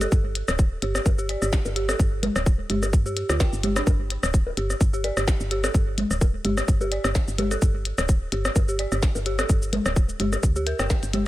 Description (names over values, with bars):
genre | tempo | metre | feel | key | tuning
minimal techno | 128 BPM | 4/4 | swing 55% on 16ths | unclear | A4 = 440 Hz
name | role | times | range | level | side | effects
dark detuned synth bell | riff | 0.0-11.2 s | D4 to G5 | -31 LUFS | right 2 dB | chorus, sidechain pumping, digital delay
woody FM bass | bass | 0.0-11.3 s | D1 to G2 | -27 LUFS | equal | sidechain pumping
minimal click drum kit | drums | 0.0-11.2 s | hi-hat, shaker, snare drum | -31 LUFS | left 2 dB | none
electronic rim click, bongos and congas | percussion | 0.0-11.2 s | none | -28 LUFS | left 1 dB | digital delay
electronic kick drum | drums | 0.1-11.0 s | none | -20 LUFS | equal | none
room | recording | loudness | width
little or no reverb | none | -21 LUFS | side -16 dB against mid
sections
0.0-11.3 A section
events
none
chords
0.0 G5